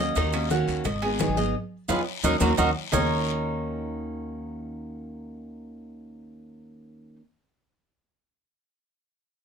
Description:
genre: latin, Cuban son and guajira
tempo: 173 BPM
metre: 4/4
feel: straight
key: Eb minor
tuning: A4 = 437 Hz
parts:
  - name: picked steel-string acoustic guitar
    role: accompaniment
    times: 0.0-7.2 s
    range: Eb3 to Ab4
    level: -30 LUFS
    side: equal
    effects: none
  - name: Cuban tres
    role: arpeggios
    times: 0.0-7.2 s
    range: Eb4 to Eb5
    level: -27 LUFS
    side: right 3 dB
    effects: none
  - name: upright bass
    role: bass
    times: 0.0-7.2 s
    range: Ab1 to F2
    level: -31 LUFS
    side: left 1 dB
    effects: none
  - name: bongos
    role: percussion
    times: 0.0-3.0 s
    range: none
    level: -34 LUFS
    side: left 7 dB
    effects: none
  - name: guiro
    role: percussion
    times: 0.0-3.0 s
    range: none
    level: -38 LUFS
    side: left 8 dB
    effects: none
  - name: congas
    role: percussion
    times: 0.2-3.0 s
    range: none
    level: -33 LUFS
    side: left 1 dB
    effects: none
  - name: maracas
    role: percussion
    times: 0.2-3.0 s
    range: none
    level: -36 LUFS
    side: right 9 dB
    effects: none
  - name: timbales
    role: percussion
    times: 0.2-3.0 s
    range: none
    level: -35 LUFS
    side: right 4 dB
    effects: none
room: light reverb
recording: minimal, uncompressed stereo recording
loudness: -23 LUFS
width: side -7 dB against mid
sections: 0.0-2.9 A section; 2.9-5.7 B section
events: band accent 1.5-2.9; drum fill 1.9-2.9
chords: 0.0 Ebm7; 0.9 Abm7; 1.5 Fm7b5; 2.2 Ebm7

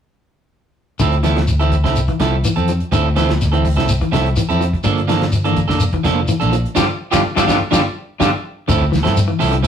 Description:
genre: afrobeat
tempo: 125 BPM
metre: 4/4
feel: straight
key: D minor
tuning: A4 = 440 Hz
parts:
  - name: electric guitar at the edge of break-up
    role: arpeggios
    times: 1.0-9.7 s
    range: D3 to G3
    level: -21 LUFS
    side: left 5 dB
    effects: harmonic tremolo
  - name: electric guitar at the edge of break-up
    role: stabs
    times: 1.0-9.7 s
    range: F3 to A4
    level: -19 LUFS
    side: right 5 dB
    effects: none
  - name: fingered electric bass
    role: bass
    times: 1.0-9.7 s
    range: F1 to G2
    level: -18 LUFS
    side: equal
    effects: none
  - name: damped 70s drum kit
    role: drums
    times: 1.0-9.7 s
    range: hi-hat, kick drum, snare drum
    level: -23 LUFS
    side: right 1 dB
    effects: none
  - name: shekere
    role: percussion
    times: 1.0-9.7 s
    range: none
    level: -22 LUFS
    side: left 2 dB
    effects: none
room: moderate studio reverb, RT60 0.6 s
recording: rough rehearsal-room recording, warm saturation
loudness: -14 LUFS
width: side -8 dB against mid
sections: 1.0-8.7 A section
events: band accent 6.8-8.7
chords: 1.0 Dm9; 4.8 Gm9; 8.7 Dm9

